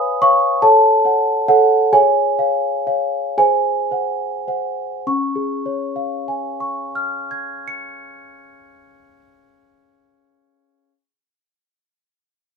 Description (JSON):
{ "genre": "classical, lullaby for celesta", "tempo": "33-49 BPM (dotted quarters)", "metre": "6/8", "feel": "straight", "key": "Db major", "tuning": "A4 = 438 Hz", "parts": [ { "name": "celesta", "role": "solo", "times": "0.0-10.9 s", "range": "Db4 to Db7", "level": "-15 LUFS", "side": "equal", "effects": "none" } ], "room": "moderate studio reverb, RT60 0.6 s", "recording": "minimal, uncompressed stereo recording", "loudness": "-15 LUFS", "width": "side -5 dB against mid", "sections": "0.0-5.1 A section; 5.1-8.7 B section", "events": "slowing down 0.0-5.1", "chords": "0.0 Db7/Cb; 0.6 Gbm/A; 1.9 Db/Ab; 3.4 Ab7; 5.1 Db" }